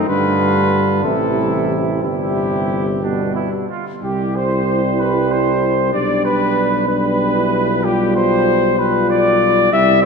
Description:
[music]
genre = classical, brass quintet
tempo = 63 BPM (dotted quarters)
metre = 6/8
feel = straight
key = C major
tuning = A4 = 440 Hz
[part]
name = mellow cornet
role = melody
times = 0.0-10.1 s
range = G4 to E5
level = -20 LUFS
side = left 6 dB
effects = none
[part]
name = warm trumpet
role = second line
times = 0.0-10.1 s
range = D4 to E5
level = -23 LUFS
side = right 6 dB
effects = none
[part]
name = clear euphonium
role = accompaniment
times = 0.0-10.1 s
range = B2 to G3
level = -21 LUFS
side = right 3 dB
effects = none
[part]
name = mellow French horn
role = accompaniment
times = 0.0-10.1 s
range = E3 to F4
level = -22 LUFS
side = left 4 dB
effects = none
[part]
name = mellow tuba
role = bass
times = 0.0-10.1 s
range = G1 to G2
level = -21 LUFS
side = right 4 dB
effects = none
[sound]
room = wet church reverb, RT60 3.3 s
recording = none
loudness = -14 LUFS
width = side -5 dB against mid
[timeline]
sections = 0.0-4.0 A section; 4.0-10.1 B section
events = none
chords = 0.1 G7; 1.1 Am; 2.0 C/G; 3.0 G; 4.0 C; 5.9 G/B; 7.8 G7/B

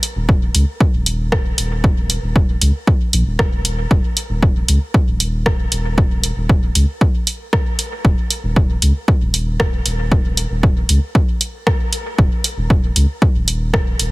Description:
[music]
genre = dub techno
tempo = 116 BPM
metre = 4/4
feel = straight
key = unclear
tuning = A4 = 442 Hz
[part]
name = deep house drum kit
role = drums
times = 0.0-14.1 s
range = hi-hat, rim click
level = -21 LUFS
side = equal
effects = overdrive, dub echo
[part]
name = warm sub bass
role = bass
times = 0.2-14.1 s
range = Eb1 to Db2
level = -18 LUFS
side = equal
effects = sidechain pumping
[part]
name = electronic kick drum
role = drums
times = 0.3-13.8 s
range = none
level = -15 LUFS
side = equal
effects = overdrive
[sound]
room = little or no reverb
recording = heavily compressed radio sound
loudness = -14 LUFS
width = side -21 dB against mid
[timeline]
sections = 0.0-14.1 A section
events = none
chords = none

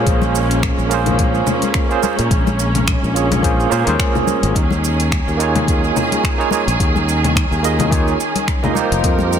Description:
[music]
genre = sunset chillout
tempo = 107 BPM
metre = 4/4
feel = swing 55% on 16ths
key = Bb dorian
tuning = A4 = 440 Hz
[part]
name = barky tine electric piano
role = accompaniment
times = 0.0-9.4 s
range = Bb3 to Eb5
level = -20 LUFS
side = moving between left 3 dB and right 6 dB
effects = overdrive, medium tremolo, auto-pan, ping-pong delay
[part]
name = rich symphonic string section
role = sustained chords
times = 0.0-9.4 s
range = Eb3 to Bb4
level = -21 LUFS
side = right 3 dB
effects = none
[part]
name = modern bright fingered electric bass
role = bass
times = 0.0-9.4 s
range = F1 to Bb2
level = -19 LUFS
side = equal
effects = none
[part]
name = deep house drum kit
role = drums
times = 0.1-9.4 s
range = congas, finger snaps, hi-hat, shaker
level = -22 LUFS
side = left 2 dB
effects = overdrive, soft clipping on snare
[part]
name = electronic kick drum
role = drums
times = 0.1-9.2 s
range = none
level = -19 LUFS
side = equal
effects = overdrive
[part]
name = congas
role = percussion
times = 0.2-9.3 s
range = none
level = -27 LUFS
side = left 6 dB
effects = none
[sound]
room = light reverb, digital ambience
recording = dense, heavily limited modern master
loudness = -14 LUFS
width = side -8 dB against mid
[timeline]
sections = 0.0-9.4 A section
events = none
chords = 0.0 Bbm7; 4.6 Eb7sus4; 8.8 F9sus4

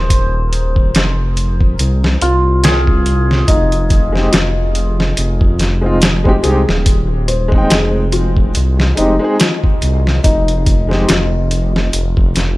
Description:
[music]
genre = trip hop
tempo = 71 BPM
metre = 4/4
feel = swing 56% on 16ths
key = F minor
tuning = A4 = 441 Hz
[part]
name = cimbalom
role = melody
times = 0.0-5.7 s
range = F4 to C5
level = -22 LUFS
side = equal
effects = dub echo
[part]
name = dark detuned saw bass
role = bass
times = 0.0-12.6 s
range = Eb1 to C2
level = -15 LUFS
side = equal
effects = none
[part]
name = trip hop sampler-style drum kit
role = drums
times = 0.1-12.6 s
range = hi-hat, kick drum, snare drum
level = -14 LUFS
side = equal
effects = studio reverb
[part]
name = felt-muted upright piano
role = arpeggios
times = 3.5-12.6 s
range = Eb4 to C5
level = -20 LUFS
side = left 2 dB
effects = vintage 12-bit sampler grit, tape echo
[part]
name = warm upright piano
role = accompaniment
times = 4.1-11.0 s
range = Ab3 to G5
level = -19 LUFS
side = equal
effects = tremolo, tape echo
[sound]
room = studio ambience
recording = none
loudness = -11 LUFS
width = side -19 dB against mid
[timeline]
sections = 0.0-12.6 A section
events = none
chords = 0.0 Fm7

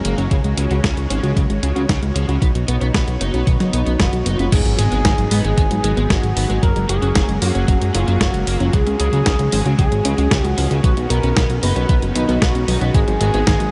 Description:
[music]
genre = synthwave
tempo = 114 BPM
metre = 4/4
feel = straight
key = unclear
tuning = A4 = 440 Hz
[part]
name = soft supersaw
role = sustained chords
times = 0.0-13.7 s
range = D#3 to C#5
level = -29 LUFS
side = equal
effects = subtle chorus, sidechain pumping
[part]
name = soft round pluck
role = arpeggios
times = 0.0-13.7 s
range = D#3 to B4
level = -29 LUFS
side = equal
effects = chorus, delay
[part]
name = overdriven semi-hollow guitar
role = riff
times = 0.0-13.6 s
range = C#3 to D#4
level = -33 LUFS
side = equal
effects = analog chorus, delay
[part]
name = detuned 8-bit digital drum machine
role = drums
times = 0.0-13.7 s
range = crash cymbal, hi-hat, snare drum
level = -26 LUFS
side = equal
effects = none
[part]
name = fat analog bass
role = bass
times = 0.1-13.7 s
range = F#1 to G#2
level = -21 LUFS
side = equal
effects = none
[part]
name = electronic kick drum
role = drums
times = 0.3-13.6 s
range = none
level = -20 LUFS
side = equal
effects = none
[part]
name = expressive synth lead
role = melody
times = 3.7-13.7 s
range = D#4 to B4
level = -26 LUFS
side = equal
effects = subtle chorus, cassette tape, tape echo
[part]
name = impact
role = sound effects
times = 4.6-6.6 s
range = none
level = -30 LUFS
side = equal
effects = none
[sound]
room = moderate huge ambient reverb, RT60 7.9 s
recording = dreamy mix soaked in reverb, nothing above 11.0 kHz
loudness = -17 LUFS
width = mono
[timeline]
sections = 0.0-4.5 A section; 4.5-13.7 B section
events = impact 4.5-6.6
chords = 0.3 C#sus4; 2.4 Badd9; 4.5 G#m7; 6.6 F#add9; 8.7 C#sus4; 10.8 Badd9; 12.9 G#m7

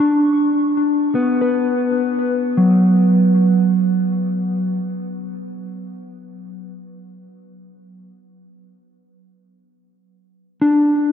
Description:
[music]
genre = ambient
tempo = free time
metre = none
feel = none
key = B minor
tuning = A4 = 441 Hz
[part]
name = mellow electric guitar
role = solo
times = 0.0-4.8, 10.6-11.1 s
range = F#3 to C#6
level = -16 LUFS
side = equal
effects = spring reverb, ping-pong delay
[sound]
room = wet huge ambient reverb, RT60 8.0 s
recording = dark, warm production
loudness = -14 LUFS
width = side -8 dB against mid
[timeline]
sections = 0.0-6.3 A section; 6.3-11.1 B section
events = none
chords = 0.0 Bm; 6.3 N.C.

